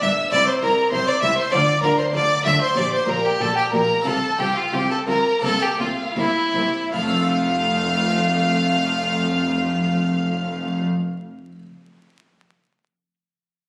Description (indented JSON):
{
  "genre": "classical, baroque-style concerto movement with solo episodes",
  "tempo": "77-100 BPM",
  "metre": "4/4",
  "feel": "straight",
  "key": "F major",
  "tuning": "A4 = 440 Hz",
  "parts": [
    { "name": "clear violin", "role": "melody", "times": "0.0-10.8 s", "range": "E4 to F5", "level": "-23 LUFS", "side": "equal", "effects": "none" },
    { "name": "rich chamber violin section", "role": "melody", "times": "0.0-10.8 s", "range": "E5 to E6", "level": "-30 LUFS", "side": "equal", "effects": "none" },
    { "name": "warm studio violin section", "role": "second line", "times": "0.0-10.8 s", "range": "E4 to E5", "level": "-32 LUFS", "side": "equal", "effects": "none" },
    { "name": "harpsichord", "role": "accompaniment", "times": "0.0-11.7 s", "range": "G2 to C5", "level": "-32 LUFS", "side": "equal", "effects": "none" },
    { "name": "rich chamber viola section", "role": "accompaniment", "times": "0.0-10.8 s", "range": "A3 to G4", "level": "-33 LUFS", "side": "equal", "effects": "none" },
    { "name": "clear chamber double bass section", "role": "bass", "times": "0.0-10.8 s", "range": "F1 to D2", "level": "-33 LUFS", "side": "equal", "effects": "none" },
    { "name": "warm symphonic cello section", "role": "bass", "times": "0.0-10.8 s", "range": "F2 to D3", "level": "-28 LUFS", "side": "equal", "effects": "none" }
  ],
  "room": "moderate scoring stage reverb, RT60 1.8 s",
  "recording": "recorded on a phone in the room, studio ambience, vinyl crackle, compression",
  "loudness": "-20 LUFS",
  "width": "mono",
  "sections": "0.0-6.9 A section; 6.9-10.1 B section",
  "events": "slowing down 0.3-6.9",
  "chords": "0.3 C; 1.5 Dm; 2.8 Gm/Bb; 4.1 Csus4; 5.4 C7; 6.9 F"
}